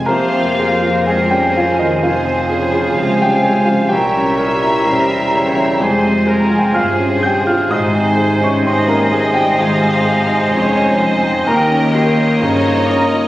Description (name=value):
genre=classical, romantic movement for piano and orchestra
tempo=64 BPM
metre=4/4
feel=rubato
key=F minor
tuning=A4 = 440 Hz
part: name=clear baby grand piano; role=melody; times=0.0-13.3 s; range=C2 to G6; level=-17 LUFS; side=equal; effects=none
part: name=rich symphonic violin section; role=second line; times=0.0-13.3 s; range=C4 to Db5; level=-27 LUFS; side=left 1 dB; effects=none
part: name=mellow French horn section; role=sustained chords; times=0.0-13.3 s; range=Eb3 to G4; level=-20 LUFS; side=left 1 dB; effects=none
part: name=rich studio cello section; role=bass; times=0.0-13.3 s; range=C2 to Ab2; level=-23 LUFS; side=equal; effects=none
part: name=rich chamber violin section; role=melody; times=0.1-13.3 s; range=C5 to F5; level=-26 LUFS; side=left 2 dB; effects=none
part: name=clear oboe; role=second line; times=0.1-13.3 s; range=Bb4 to Eb5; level=-22 LUFS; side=right 1 dB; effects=none
part: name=large flute ensemble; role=second line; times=0.1-13.3 s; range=F5 to Bb5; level=-21 LUFS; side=equal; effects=none
part: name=mellow clarinet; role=second line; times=0.1-13.3 s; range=C4 to G4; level=-28 LUFS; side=right 2 dB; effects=none
part: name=mellow bassoon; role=accompaniment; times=0.1-13.1 s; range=Bb2 to F3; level=-22 LUFS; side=right 1 dB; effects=none
part: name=rich chamber viola section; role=accompaniment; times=0.1-13.3 s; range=G4 to Eb5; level=-26 LUFS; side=right 2 dB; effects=none
part: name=rich studio double bass section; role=bass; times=0.1-13.3 s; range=E1 to Eb2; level=-27 LUFS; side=right 1 dB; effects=none
room=wet scoring stage reverb, RT60 1.7 s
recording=recorded on a phone in the room, studio reverb, compression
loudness=-12 LUFS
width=side -15 dB against mid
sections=0.1-13.3 A section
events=none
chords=0.1 Fm; 3.9 C7b9; 5.8 Fm; 7.7 Ab; 11.5 Eb7